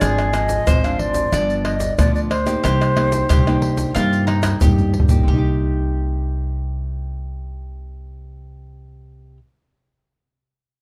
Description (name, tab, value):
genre	samba and choro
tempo	91 BPM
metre	4/4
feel	straight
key	C minor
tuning	A4 = 440 Hz
part	mellow jazz flute	melody	0.0-4.6 s	C5 to F5	-25 LUFS	equal	none
part	mandolin	second line	0.0-9.4 s	Eb4 to D5	-29 LUFS	equal	slapback echo
part	nylon-string guitar	accompaniment	0.0-9.5 s	G2 to G4	-28 LUFS	equal	none
part	upright bass	bass	0.0-9.4 s	G1 to G2	-24 LUFS	equal	none
part	egg shaker, surdo, pandeiro and tamborim	percussion	0.0-5.4 s	none	-22 LUFS	equal	none
room	small room ambience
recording	dry, close 1970s-style studio recording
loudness	-18 LUFS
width	mono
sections	0.0-5.3 A section; 5.3-7.9 B section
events	drum fill 4.5-5.3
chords	0.0 Dm7b5/Ab; 1.3 G7; 2.6 Cm7